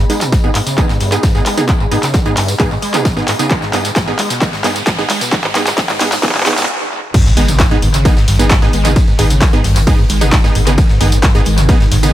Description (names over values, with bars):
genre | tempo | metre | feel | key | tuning
driving peak-time techno | 132 BPM | 4/4 | straight | G# harmonic minor | A4 = 436 Hz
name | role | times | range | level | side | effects
screaming distorted acid line | riff | 0.0-12.1 s | G2 to G#3 | -18 LUFS | equal | distortion, wide subtle chorus, sidechain pumping, tape echo
riser and impact | sound effects | 1.4-9.0 s | none | -24 LUFS | equal | none
warbly tape-like pad | texture | 0.0-6.7 s | B3 to B5 | -30 LUFS | left 2 dB | none
supersaw stab | stabs | 0.1-12.1 s | B3 to G#4 | -19 LUFS | right 2 dB | sidechain pumping, low-pass filter, tape echo
punchy analog drum machine | drums | 0.1-12.1 s | crash cymbal, handclaps, hi-hat, ride cymbal, tambourine | -18 LUFS | equal | sidechain pumping on hats, sidechain pumping on perc, sidechain pumping on cymbals, tape echo
tight funk drum kit | drums | 0.1-12.0 s | hi-hat, snare drum, tambourine | -28 LUFS | left 2 dB | none
electronic kick drum | drums | 0.3-11.8 s | none | -13 LUFS | equal | overdrive
swarming drone | drone | 8.3-12.1 s | G#2 to D#3 | -27 LUFS | right 1 dB | none
saturated sub bass | bass | 7.4-12.1 s | G#1 | -14 LUFS | equal | overdrive, sidechain pumping, low-pass filter
room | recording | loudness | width
digital ambience | echo-heavy mix, high-pass filter | -10 LUFS | side -13 dB against mid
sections
0.0-7.1 A section; 7.1-12.1 B section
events
build-up 0.0-7.1; drum fill 0.0-6.7; filter sweep on acid bass 0.0-7.1; filter sweep on supersaw synth 0.0-7.1; filter sweep 0.0-7.1; riser 1.4-6.7; stop 6.7-7.1; drop 7.1-12.1; impact 7.1-9.0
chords
0.0 G#m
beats
0.32 0.78 1.23 | 1.69 2.14 2.60 3.05 | 3.51 3.96 4.42 4.87 | 5.32 5.78 6.23 6.69 | 7.14 7.60 8.05 8.51 | 8.96 9.41 9.87 10.32 | 10.78 11.23 11.69